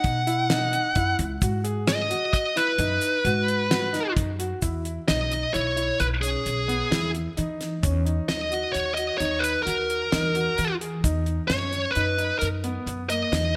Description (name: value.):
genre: progressive instrumental, band music in an uneven meter.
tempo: 131 BPM.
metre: 7/4.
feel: straight.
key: E lydian.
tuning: A4 = 439 Hz.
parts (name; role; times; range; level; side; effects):
high-gain lead guitar; melody; 0.0-13.6 s; G#4 to F#5; -27 LUFS; equal; distortion.
warm concert grand piano; arpeggios; 0.0-13.6 s; A#3 to G#4; -34 LUFS; equal; digital delay.
upright bass; bass; 0.0-13.6 s; B1 to E3; -31 LUFS; equal; none.
damped 70s drum kit; drums; 0.0-13.4 s; hi-hat, kick drum, snare drum; -30 LUFS; equal; gated reverb.
tube shaker; percussion; 1.0-13.0 s; none; -41 LUFS; equal; none.
room: light reverb, small room ambience.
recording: bright 1980s-style digital production.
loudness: -25 LUFS.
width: mono.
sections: 0.0-4.6 A section; 4.6-13.6 B section.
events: none.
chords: 0.0 F#sus4; 1.4 G#m7; 4.6 Emaj7; 7.8 G#sus2 (rootless); 11.0 B/E.